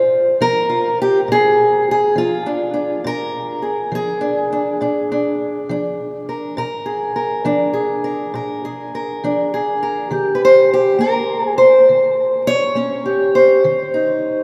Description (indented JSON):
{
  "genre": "acoustic country blues, solo or duo",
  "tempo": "68 BPM (dotted quarters)",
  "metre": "12/8",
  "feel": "straight",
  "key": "Bb mixolydian",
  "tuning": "A4 = 440 Hz",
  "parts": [
    { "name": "fingerpicked steel-string acoustic guitar", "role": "solo", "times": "0.0-14.4 s", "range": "Bb2 to Db5", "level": "-17 LUFS", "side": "equal", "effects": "none" }
  ],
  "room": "wet cathedral reverb, RT60 5.2 s",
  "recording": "recorded in a church or concert hall",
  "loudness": "-17 LUFS",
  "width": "mono",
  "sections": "0.0-14.4 A section",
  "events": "none",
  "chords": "0.0 Bb7; 10.1 Eb7"
}